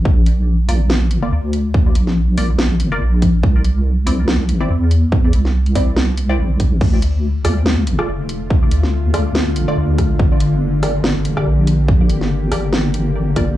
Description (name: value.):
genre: deep dubstep.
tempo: 142 BPM.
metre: 4/4.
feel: swing 56% on 16ths, half-time.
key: unclear.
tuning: A4 = 440 Hz.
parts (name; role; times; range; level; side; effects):
deep soft wobble bass; bass; 0.0-13.6 s; F1 to E2; -16 LUFS; equal; chorus.
electronic kick drum; drums; 0.1-13.5 s; none; -14 LUFS; equal; none.
garage drum kit; drums; 0.3-13.5 s; crash cymbal, hi-hat, rim click, snare drum; -21 LUFS; equal; none.
filtered dub chord stab; stabs; 0.7-13.6 s; A3 to D5; -25 LUFS; equal; phaser, dub echo.
bowed-like drone; sustained chords; 7.9-13.5 s; D3 to G4; -20 LUFS; equal; built-in reverb.
room: digital ambience.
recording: dry, gritty hardware recording, cassette tape, studio reverb.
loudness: -14 LUFS.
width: side -14 dB against mid.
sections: 0.0-13.6 A section.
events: none.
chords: 0.1 Bb; 3.4 Cadd9; 6.8 Dm; 10.2 Gm.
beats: | 0.05 0.47 0.90 1.32 | 1.74 2.17 2.59 3.01 | 3.43 3.85 4.28 4.70 | 5.12 5.55 5.97 6.39 | 6.81 7.24 7.66 8.08 | 8.50 8.93 9.35 9.77 | 10.19 10.62 11.04 11.46 | 11.88 12.31 12.73 13.15.